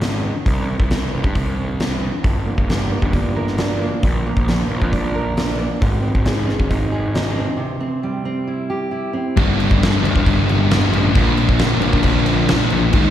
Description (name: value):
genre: quiet-loud alternative rock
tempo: 134 BPM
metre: 4/4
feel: straight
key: unclear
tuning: A4 = 439 Hz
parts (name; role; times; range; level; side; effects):
- fuzz picked electric bass; bass; 0.0-13.1 s; G1 to G2; -22 LUFS; equal; overdrive
- huge arena drum kit; drums; 0.0-13.0 s; crash cymbal, hi-hat, kick drum, snare drum; -19 LUFS; equal; none
- fingerpicked steel-string acoustic guitar; arpeggios; 2.2-9.4 s; G2 to Bb4; -22 LUFS; right 2 dB; none
- sludgy distorted guitar; riff; 9.4-13.1 s; G2 to Eb4; -20 LUFS; right 7 dB; overdrive
- thick fuzz guitar; riff; 9.4-13.1 s; G2 to Eb4; -18 LUFS; left 8 dB; distortion
room: little or no reverb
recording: live gig heard through the venue's PA, recital hall reverb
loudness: -16 LUFS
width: side -11 dB against mid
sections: 0.0-9.4 A section; 9.4-13.1 B section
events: break 7.6-9.4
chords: 0.5 C5; 2.2 Gm; 4.0 Bb; 5.8 Ab; 7.6 C; 9.4 Gm; 11.2 Bb